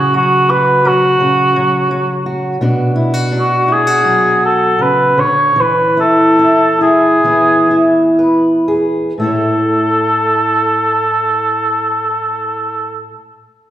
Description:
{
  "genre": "acoustic folk-pop ballad",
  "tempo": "58-86 BPM",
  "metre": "4/4",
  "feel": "straight",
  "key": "A major",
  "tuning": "A4 = 440 Hz",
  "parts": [
    { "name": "mellow cor anglais", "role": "melody", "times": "0.0-13.1 s", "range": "F#4 to C#5", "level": "-12 LUFS", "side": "equal", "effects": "none" },
    { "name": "fingerpicked steel-string acoustic guitar", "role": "accompaniment", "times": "0.0-13.2 s", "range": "A2 to C#5", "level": "-14 LUFS", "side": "equal", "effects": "none" }
  ],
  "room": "wet recital hall reverb, RT60 1.7 s",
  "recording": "heard from further back in the room",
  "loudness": "-10 LUFS",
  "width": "side -12 dB against mid",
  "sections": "0.0-9.2 A section; 9.2-13.3 B section",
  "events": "slowing down 2.6-9.2",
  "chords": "0.0 C#sus4; 2.6 Bm; 5.6 N.C.; 7.2 E; 9.2 A"
}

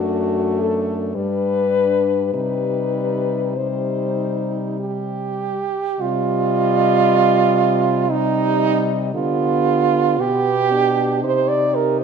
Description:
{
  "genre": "classical, lyrical piece for horn quartet",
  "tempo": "48-60 BPM",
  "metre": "3/4",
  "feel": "rubato",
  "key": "C minor",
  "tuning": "A4 = 442 Hz",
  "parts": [
    { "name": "mellow French horn", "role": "melody", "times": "0.0-12.0 s", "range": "F#4 to Eb5", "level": "-23 LUFS", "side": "left 7 dB", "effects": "none" },
    { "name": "warm French horn", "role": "second line", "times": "0.0-12.0 s", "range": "D4 to D5", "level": "-20 LUFS", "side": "right 7 dB", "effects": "none" },
    { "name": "warm French horn", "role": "accompaniment", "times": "0.0-12.0 s", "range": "G3 to Eb4", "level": "-25 LUFS", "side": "left 3 dB", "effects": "none" },
    { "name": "dark French horn", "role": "bass", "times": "0.0-12.0 s", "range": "F#2 to D3", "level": "-25 LUFS", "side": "right 1 dB", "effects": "none" }
  ],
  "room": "wet recital hall reverb, RT60 1.5 s",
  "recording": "none",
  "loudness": "-16 LUFS",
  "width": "side -6 dB against mid",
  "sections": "0.0-6.0 A section; 6.0-12.0 B section",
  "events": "none",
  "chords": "0.0 D/F#; 1.2 G; 2.3 Cm; 9.1 G7/D; 11.2 Cm"
}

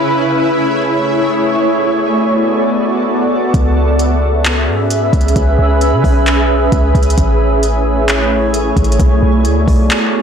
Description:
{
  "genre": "hip hop, atmospheric cloud-rap",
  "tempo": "132 BPM",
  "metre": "4/4",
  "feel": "half-time",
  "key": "A major",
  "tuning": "A4 = 440 Hz",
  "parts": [
    { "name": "shimmering ambient pad", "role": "sustained chords", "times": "0.0-10.2 s", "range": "A3 to E5", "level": "-13 LUFS", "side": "equal", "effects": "chorus, built-in reverb, sidechain pumping" },
    { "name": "warm 808-style bass", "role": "bass", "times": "3.5-9.9 s", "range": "A1 to C#3", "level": "-14 LUFS", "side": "equal", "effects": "none" },
    { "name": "smooth R&B drum kit", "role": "drums", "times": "3.5-10.0 s", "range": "handclaps, hi-hat, kick drum", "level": "-16 LUFS", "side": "equal", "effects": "none" }
  ],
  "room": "little or no reverb",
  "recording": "blown-out, overdriven recording, overdrive",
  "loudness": "-11 LUFS",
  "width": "side -7 dB against mid",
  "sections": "0.0-10.2 A section",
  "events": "kick muted 9.9-10.2",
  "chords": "0.0 Amaj7; 1.7 Bm7; 3.5 C#m7; 7.2 Amaj7; 9.0 Bm7"
}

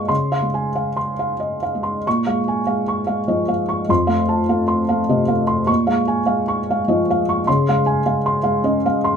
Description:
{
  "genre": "neoclassical minimalist piano",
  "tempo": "100 BPM",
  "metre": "3/4",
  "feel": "rubato",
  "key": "Bb minor",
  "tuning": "A4 = 440 Hz",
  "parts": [
    { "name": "felt-muted upright piano", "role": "solo", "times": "0.0-9.2 s", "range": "F2 to Db6", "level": "-17 LUFS", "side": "equal", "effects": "none" }
  ],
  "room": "light reverb",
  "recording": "minimal, uncompressed stereo recording",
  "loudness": "-17 LUFS",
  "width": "side -7 dB against mid",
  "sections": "0.0-2.1 A section; 2.1-9.2 A section",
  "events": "none",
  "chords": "0.1 Dbmaj7; 2.1 Bbm7; 3.9 F; 5.7 Bbm7; 7.5 Dbmaj7"
}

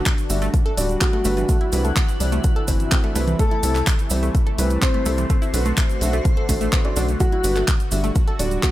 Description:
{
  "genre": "progressive house",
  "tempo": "126 BPM",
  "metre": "4/4",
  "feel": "straight",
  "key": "unclear",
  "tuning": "A4 = 439 Hz",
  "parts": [
    { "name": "warm analog pad", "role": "sustained chords", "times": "0.0-8.7 s", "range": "C3 to F#4", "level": "-31 LUFS", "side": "left 2 dB", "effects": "chorus, sidechain pumping" },
    { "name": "electronic kick drum", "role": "drums", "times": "0.1-8.7 s", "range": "none", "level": "-20 LUFS", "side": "equal", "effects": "small room ambience" },
    { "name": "pop drum kit", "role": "drums", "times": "0.1-8.7 s", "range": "handclaps, hi-hat", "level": "-27 LUFS", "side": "equal", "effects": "small room ambience" },
    { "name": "cabasa", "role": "percussion", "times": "0.1-8.7 s", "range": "none", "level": "-32 LUFS", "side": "right 6 dB", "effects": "none" },
    { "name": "felt-muted upright piano", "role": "stabs", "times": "0.3-8.7 s", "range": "E3 to E5", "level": "-27 LUFS", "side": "right 1 dB", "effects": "sidechain pumping, digital delay" },
    { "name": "tight sequencer bass", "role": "bass", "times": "0.3-8.6 s", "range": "D1 to C2", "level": "-22 LUFS", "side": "equal", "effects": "sidechain pumping" },
    { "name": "wide unison pluck", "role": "arpeggios", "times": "0.4-8.7 s", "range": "E3 to A4", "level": "-30 LUFS", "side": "right 1 dB", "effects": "sidechain pumping, digital delay" },
    { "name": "dark grand piano", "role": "melody", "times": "1.0-8.7 s", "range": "F#3 to C5", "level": "-28 LUFS", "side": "left 1 dB", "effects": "vintage 12-bit sampler grit, digital delay" },
    { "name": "airy dreamy lead", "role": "second line", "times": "1.0-8.7 s", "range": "F#4 to C5", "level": "-34 LUFS", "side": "equal", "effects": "chorus, phaser, sidechain pumping, digital delay" }
  ],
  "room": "little or no reverb",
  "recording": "none",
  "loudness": "-17 LUFS",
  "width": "side -15 dB against mid",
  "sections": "0.0-8.7 A section",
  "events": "none",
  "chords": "0.0 Gmaj7; 1.5 Cmaj7; 3.4 Am7/C; 5.3 Bm7; 7.2 Gmaj7(no3)"
}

